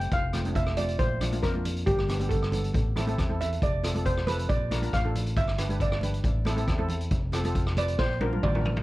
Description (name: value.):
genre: calypso.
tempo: 137 BPM.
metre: 4/4.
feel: straight.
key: unclear.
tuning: A4 = 439 Hz.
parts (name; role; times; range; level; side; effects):
steel pan; melody; 0.0-8.8 s; G4 to G5; -31 LUFS; right 1 dB; plate reverb, ping-pong delay.
steel pan; accompaniment; 0.0-8.8 s; A3 to B4; -35 LUFS; equal; none.
fingered electric bass; bass; 0.0-8.8 s; F1 to F2; -29 LUFS; equal; none.
street-band drum kit; drums; 0.0-8.8 s; hi-hat, kick drum, rim click, snare drum, toms; -29 LUFS; equal; none.
congas; percussion; 0.3-8.8 s; none; -37 LUFS; right 1 dB; none.
room: light reverb.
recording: worn, warbling old tape, cassette tape, warbly pitch drift.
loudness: -24 LUFS.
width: side -18 dB against mid.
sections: 0.0-8.8 A section.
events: steel pan solo 0.0-8.8; drum fill 8.0-8.8.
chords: 0.1 F; 1.0 Bbadd9; 1.9 G; 2.7 Am; 3.6 F; 4.5 Bb; 5.4 G; 6.2 Am; 7.1 F; 8.0 Bb.